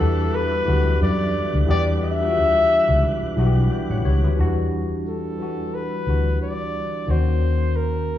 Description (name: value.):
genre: R&B, neo-soul.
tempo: 89 BPM.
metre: 4/4.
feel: swing 56% on 16ths.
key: E dorian.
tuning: A4 = 441 Hz.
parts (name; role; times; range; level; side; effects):
mellow flugelhorn; melody; 0.0-8.2 s; A4 to E5; -23 LUFS; left 2 dB; none.
tine electric piano; accompaniment; 0.0-8.2 s; D#3 to G5; -26 LUFS; left 1 dB; medium stereo tremolo.
tonewheel organ; sustained chords; 0.0-4.3 s; E3 to F#5; -34 LUFS; equal; slow rotary speaker.
vintage muted fingered electric bass; bass; 0.0-8.2 s; A1 to F#2; -21 LUFS; equal; none.
room: moderate concert hall reverb, RT60 1.9 s.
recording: recorded in a church or concert hall, small room ambience.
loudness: -18 LUFS.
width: side -12 dB against mid.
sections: 0.0-4.4 A section; 4.4-8.2 B section.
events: none.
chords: 0.0 Em9; 7.1 D#m7.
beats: 0.33 1.00 | 1.68 2.35 3.02 3.70 | 4.37 5.05 5.72 6.39 | 7.07 7.74.